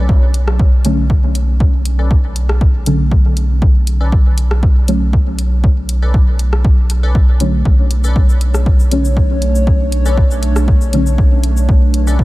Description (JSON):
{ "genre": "dub techno", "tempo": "119 BPM", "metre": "4/4", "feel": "swing 53% on 16ths", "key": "B minor", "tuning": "A4 = 440 Hz", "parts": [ { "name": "wavetable chord stab", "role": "riff", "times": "0.0-12.2 s", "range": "C#4 to D5", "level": "-31 LUFS", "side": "left 2 dB", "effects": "cassette tape, sidechain pumping, dub echo" }, { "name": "round analog bass", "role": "bass", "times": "0.0-12.2 s", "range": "B1", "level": "-14 LUFS", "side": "equal", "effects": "sidechain pumping" }, { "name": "electronic kick drum", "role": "drums", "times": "0.1-12.2 s", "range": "none", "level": "-12 LUFS", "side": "equal", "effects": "overdrive" }, { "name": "punchy analog drum machine", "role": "drums", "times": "0.3-12.2 s", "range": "cabasa, hi-hat, rim click", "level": "-26 LUFS", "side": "left 1 dB", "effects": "overdrive, dub echo" }, { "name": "deep mellow chord stab", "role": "stabs", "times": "0.8-11.1 s", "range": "D3 to C#4", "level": "-21 LUFS", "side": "equal", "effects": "chorus, phaser, vintage 12-bit sampler grit, dub echo" }, { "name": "dark analog pad", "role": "sustained chords", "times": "8.1-12.2 s", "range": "A3 to C#5", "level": "-21 LUFS", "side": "right 1 dB", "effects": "chorus, phaser, sidechain pumping" } ], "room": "light reverb", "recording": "none", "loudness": "-11 LUFS", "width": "side -18 dB against mid", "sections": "0.0-12.2 A section", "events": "filter sweep on synth stab 0.0-12.2", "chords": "0.0 Bm9" }